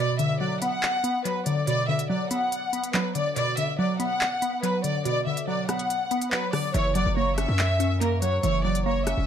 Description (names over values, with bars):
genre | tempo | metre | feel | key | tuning
hip hop, drill | 142 BPM | 4/4 | half-time | B harmonic minor | A4 = 440 Hz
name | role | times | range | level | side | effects
warm studio violin section | melody | 0.0-9.3 s | A#4 to F#5 | -27 LUFS | left 1 dB | tape echo
glassy wavetable pluck | accompaniment | 0.0-9.3 s | B2 to C#4 | -27 LUFS | right 1 dB | chorus
drill drum kit | drums | 0.2-9.2 s | handclaps, hi-hat, rim click | -31 LUFS | equal | tape echo
hard-hitting 808-style bass | bass | 6.7-9.3 s | E1 to F#2 | -25 LUFS | equal | none
room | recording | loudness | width
light reverb, digital ambience | echo-heavy mix | -23 LUFS | side -8 dB against mid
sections
0.0-9.3 A section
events
break 0.0-6.7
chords
0.0 Bm; 6.7 F#7